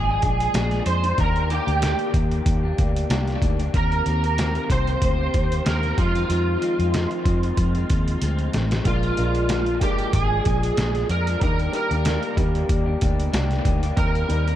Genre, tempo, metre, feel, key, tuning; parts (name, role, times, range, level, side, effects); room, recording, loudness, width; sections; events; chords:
indie pop, bedroom pop; 94 BPM; 4/4; swing 55% on 16ths; A4 = 440 Hz
overdriven slide guitar; melody; 0.0-14.6 s; F4 to C5; -25 LUFS; right 1 dB; ensemble chorus, dub echo
electric guitar through a small old amp; accompaniment; 0.0-14.6 s; F2 to G4; -29 LUFS; left 3 dB; lush chorus, warbly pitch drift, dub echo
vintage muted fingered electric bass; bass; 0.0-14.6 s; G1 to F2; -23 LUFS; equal
trip hop sampler-style drum kit; drums; 0.2-14.6 s; hi-hat, kick drum, snare drum; -24 LUFS; equal; dub echo
clear upright piano; accompaniment; 8.8-14.6 s; G3 to Bb4; -32 LUFS; right 3 dB; dub echo
light reverb; echo-heavy mix; -19 LUFS; side -12 dB against mid
0.0-14.6 A section
drum fill 8.2-8.9
0.0 Bb7; 1.2 Cm7; 6.0 Fm7; 8.9 Bb7; 11.4 Cm7